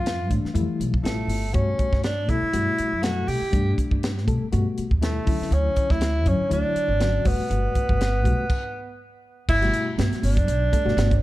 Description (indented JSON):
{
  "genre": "electric jazz fusion",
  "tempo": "121 BPM",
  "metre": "4/4",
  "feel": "swing 55% on 16ths",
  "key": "G lydian",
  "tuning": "A4 = 440 Hz",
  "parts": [
    { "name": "clear tenor saxophone", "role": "melody", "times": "0.0-11.2 s", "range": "A3 to G4", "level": "-26 LUFS", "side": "right 1 dB", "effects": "none" },
    { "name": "reed electric piano", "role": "accompaniment", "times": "0.0-11.1 s", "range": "B2 to C#5", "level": "-29 LUFS", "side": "left 4 dB", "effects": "fast tremolo" },
    { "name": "upright bass", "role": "bass", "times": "0.0-11.2 s", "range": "G1 to B2", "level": "-24 LUFS", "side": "equal", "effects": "none" },
    { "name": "crisp fusion drum kit", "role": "drums", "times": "0.1-11.2 s", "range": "crash cymbal, hi-hat, kick drum, snare drum", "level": "-26 LUFS", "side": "equal", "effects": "none" },
    { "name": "congas", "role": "percussion", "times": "9.5-11.1 s", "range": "none", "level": "-32 LUFS", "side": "right 6 dB", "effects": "none" }
  ],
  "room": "little or no reverb",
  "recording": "dark, warm production",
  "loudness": "-20 LUFS",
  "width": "side -16 dB against mid",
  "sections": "0.0-9.5 A section; 9.5-11.2 B section",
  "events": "stop 8.5-9.5",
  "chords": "0.0 Fmaj9; 1.6 Gmaj9; 5.3 Dmaj9; 7.3 Gmaj9"
}